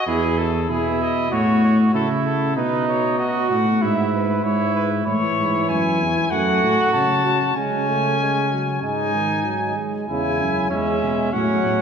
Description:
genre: classical, imitative canzona for brass ensemble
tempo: 96 BPM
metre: 4/4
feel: straight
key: E major, C# minor from 5.1 s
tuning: A4 = 440 Hz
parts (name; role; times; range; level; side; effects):
- clear trumpet; melody; 0.0-11.8 s; G#4 to A5; -24 LUFS; left 4 dB; none
- clear flugelhorn; second line; 0.0-11.8 s; C#4 to F#4; -24 LUFS; right 4 dB; none
- mellow tuba; bass; 0.1-11.8 s; E2 to C#3; -22 LUFS; equal; none
- mellow trombone; accompaniment; 5.1-11.8 s; C#3 to A3; -25 LUFS; right 1 dB; none
room: wet church reverb, RT60 3.0 s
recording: minimal, uncompressed stereo recording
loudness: -18 LUFS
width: side -7 dB against mid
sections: 0.0-5.1 A section; 5.1-10.1 B section; 10.1-11.8 C section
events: none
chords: 0.1 E; 1.3 A; 2.6 B; 3.8 E/G#; 5.1 A (rootless); 6.3 F#m; 7.6 G#sus4/C#; 8.8 G#5; 10.1 C#m/E

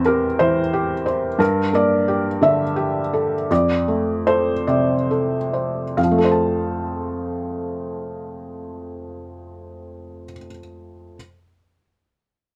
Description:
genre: classical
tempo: 44-60 BPM (dotted quarters)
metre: 6/8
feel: rubato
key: F major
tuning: A4 = 440 Hz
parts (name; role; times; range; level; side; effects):
- felt-muted upright piano; accompaniment; 0.0-11.2 s; E2 to A5; -21 LUFS; equal; none
room: little or no reverb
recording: close, detailed microphones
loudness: -20 LUFS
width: mono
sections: 0.0-6.0 A section; 6.0-11.1 B section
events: slowing down 0.4-6.0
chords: 0.0 C/E; 1.4 Gmadd9; 3.5 F

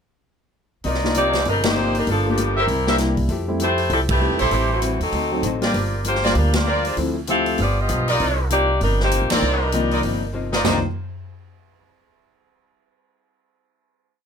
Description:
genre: jazz, big band swing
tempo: 196 BPM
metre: 4/4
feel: swing 61% on 8ths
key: C minor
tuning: A4 = 440 Hz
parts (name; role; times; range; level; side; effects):
- archtop guitar, miked and amplified; accompaniment; 0.8-10.8 s; G2 to A4; -29 LUFS; left 4 dB; none
- clear trumpet section; stabs; 0.8-10.8 s; C4 to E5; -22 LUFS; right 1 dB; none
- upright bass; bass; 0.8-10.8 s; G1 to F2; -23 LUFS; right 1 dB; none
- swinging big-band drum kit; drums; 0.8-10.7 s; crash cymbal, hi-hat, kick drum, ride cymbal, snare drum, toms; -27 LUFS; equal; none
- warm concert grand piano; accompaniment; 1.0-10.8 s; Eb3 to D5; -24 LUFS; left 2 dB; none
- bright saxophone section; melody; 1.2-10.8 s; E3 to F5; -22 LUFS; left 1 dB; plate reverb
room: light reverb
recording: close, detailed microphones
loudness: -18 LUFS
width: side -7 dB against mid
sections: 0.8-10.6 A section; 10.6-11.9 final chord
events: band accent 1.6, 4.1, 6.5, 9.3; drum fill 10.3-10.6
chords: 0.8 Cm11; 2.1 Gm9; 2.7 C7; 3.3 Fmaj9; 4.5 Am7; 5.1 D7b9; 5.7 Gm7; 7.0 Dm9; 7.6 G7; 8.2 Cm11

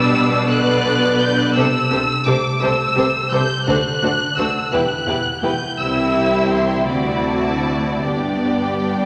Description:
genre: classical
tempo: 50-58 BPM (dotted quarters)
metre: 6/8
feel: rubato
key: G major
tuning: A4 = 439 Hz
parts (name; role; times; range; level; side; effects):
- warm symphonic violin section; melody; 0.0-9.1 s; G5 to G6; -24 LUFS; equal; none
- warm symphonic violin section; second line; 0.0-9.1 s; F#4 to E5; -24 LUFS; equal; none
- rich studio viola section; accompaniment; 0.0-9.1 s; D3 to G4; -25 LUFS; equal; none
- concert harp; arpeggios; 0.0-9.1 s; G2 to G4; -31 LUFS; equal; none
- rich symphonic cello section; bass; 0.0-9.1 s; C2 to C3; -25 LUFS; equal; none
- warm symphonic double bass section; bass; 0.0-9.1 s; E1 to D2; -30 LUFS; equal; none
room: wet scoring stage reverb, RT60 2.0 s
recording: none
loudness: -18 LUFS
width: mono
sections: 0.0-9.1 A section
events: none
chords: 0.0 G/B; 1.6 C6; 3.7 D7; 4.7 Em; 5.8 C; 6.9 D9; 8.1 G

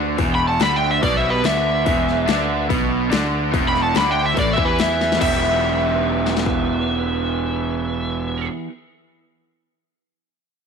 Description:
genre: blues rock power trio and southern rock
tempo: 144 BPM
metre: 4/4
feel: straight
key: E minor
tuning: A4 = 440 Hz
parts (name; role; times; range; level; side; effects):
- raw garage guitar; riff; 0.0-8.7 s; E2 to G4; -21 LUFS; right 2 dB; overdrive
- fuzz fingered electric bass; bass; 0.0-8.5 s; E1 to E2; -25 LUFS; equal; overdrive
- big-room dance drum kit; drums; 0.2-6.6 s; crash cymbal, hi-hat, kick drum, snare drum; -24 LUFS; left 4 dB; none
- overdriven slide guitar; melody; 0.3-8.5 s; B4 to B5; -22 LUFS; equal; slapback echo
- bluesy overdriven lead guitar; second line; 0.3-8.5 s; G4 to G5; -31 LUFS; right 12 dB; distortion
room: light reverb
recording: 1960s-style stereo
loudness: -17 LUFS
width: side -6 dB against mid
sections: 0.0-5.2 A section; 5.2-8.5 B section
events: drum fill 5.0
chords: 0.0 E5; 5.2 Em

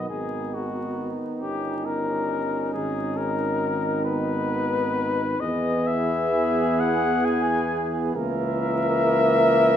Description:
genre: classical, hymn-like piece for brass band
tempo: 45 BPM (dotted quarters)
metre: 6/8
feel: uneven beats, rubato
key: unclear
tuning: A4 = 440 Hz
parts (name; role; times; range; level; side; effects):
- warm flugelhorn; melody; 0.0-9.8 s; F#4 to G#5; -25 LUFS; left 5 dB; none
- mellow flugelhorn; second line; 0.0-9.8 s; D#4 to A#4; -29 LUFS; right 6 dB; none
- bright trombone section; accompaniment; 0.0-9.8 s; A#3 to C#4; -30 LUFS; equal; none
- warm euphonium; accompaniment; 0.0-9.8 s; D#3 to E3; -30 LUFS; right 2 dB; none
- warm tuba; bass; 0.0-9.8 s; G1 to E2; -29 LUFS; equal; none
room: wet recital hall reverb, RT60 1.9 s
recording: minimal, uncompressed stereo recording, vinyl crackle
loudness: -22 LUFS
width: side -9 dB against mid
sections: 0.0-9.8 A section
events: none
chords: 0.1 G#m; 1.4 D#7/G; 2.7 G#m; 5.4 E; 8.2 A#dim/C#

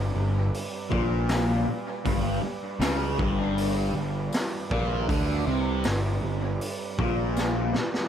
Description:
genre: psychedelic rock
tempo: 79 BPM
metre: 4/4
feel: straight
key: unclear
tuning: A4 = 440 Hz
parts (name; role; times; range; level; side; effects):
- overdriven combo organ; sustained chords; 0.0-8.1 s; G3 to D5; -37 LUFS; right 6 dB; none
- fuzz guitar; riff; 0.0-7.8 s; G2 to D3; -28 LUFS; left 1 dB; distortion, phaser, dub echo
- fuzz picked electric bass; bass; 0.0-7.8 s; G1 to D2; -29 LUFS; equal; overdrive
- raw garage drum kit; drums; 0.5-8.1 s; hi-hat, kick drum, snare drum; -30 LUFS; equal; dub echo
- tambourine; percussion; 1.3-7.5 s; none; -49 LUFS; left 8 dB; none
room: light reverb, studio reverb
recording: echo-heavy mix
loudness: -24 LUFS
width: side -9 dB against mid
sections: 0.0-8.1 A section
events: drum fill 7.4-8.1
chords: 0.0 G

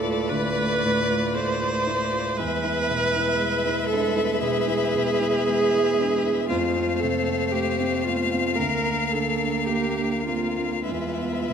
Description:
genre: classical, slow romantic movement for piano quintet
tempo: 49-59 BPM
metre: 4/4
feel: rubato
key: unclear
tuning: A4 = 437 Hz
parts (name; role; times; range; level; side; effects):
- rich violin; melody; 0.0-11.5 s; D5 to F5; -29 LUFS; left 10 dB; none
- rich cello; second line; 0.0-11.5 s; G#3 to Bb3; -32 LUFS; right 7 dB; none
- rich violin; second line; 0.0-11.5 s; Bb4 to C5; -31 LUFS; left 6 dB; none
- clear viola; accompaniment; 0.0-11.5 s; F4 to C5; -25 LUFS; right 2 dB; none
- dark baby grand piano; accompaniment; 0.0-11.5 s; D2 to F4; -28 LUFS; equal; none
room: moderate concert hall reverb, RT60 1.8 s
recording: none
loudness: -21 LUFS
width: side -7 dB against mid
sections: 0.0-11.5 A section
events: none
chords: 0.0 Bm7b5/D; 2.4 E; 6.5 F; 8.6 Bb/D; 10.9 E

